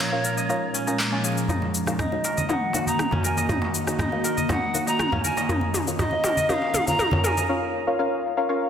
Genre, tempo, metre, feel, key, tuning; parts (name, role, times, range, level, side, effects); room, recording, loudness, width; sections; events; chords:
afro house; 120 BPM; 4/4; straight; Eb minor; A4 = 440 Hz
bright polished pan flute; melody; 0.0-7.5 s; Db5 to Bb5; -28 LUFS; equal; low-pass filter, dub echo
ethereal airy pad; sustained chords; 0.0-7.5 s; Bb2 to Eb5; -30 LUFS; equal; ensemble chorus, built-in reverb
kora; arpeggios; 0.0-8.6 s; Bb3 to Eb5; -30 LUFS; right 1 dB; dub echo
deep mellow chord stab; stabs; 0.0-8.7 s; Db4 to Ab5; -28 LUFS; left 2 dB; chorus, dub echo
house drum kit; drums; 0.0-7.5 s; handclaps, rim click, shaker, toms; -28 LUFS; left 1 dB
warm sub bass; bass; 1.5-7.4 s; barely audible
darbuka; percussion; 1.5-7.3 s; -31 LUFS; left 1 dB
congas; percussion; 1.6-7.5 s; -31 LUFS; right 2 dB
wet concert hall reverb, RT60 1.9 s, small room reverb; dense, heavily limited modern master, faint mains hum; -21 LUFS; side -8 dB against mid
0.0-1.5 A section; 1.5-8.7 B section
filter sweep on kora 0.0-1.5; filter sweep on synth stab 0.0-1.5, 1.5-8.7; build-up 1.5-8.7; drum fill 1.5-7.5; filter sweep on pan flute 1.5-8.7; break 7.5-8.7
0.0 Bbm; 1.5 Ebm7; 5.5 Bbm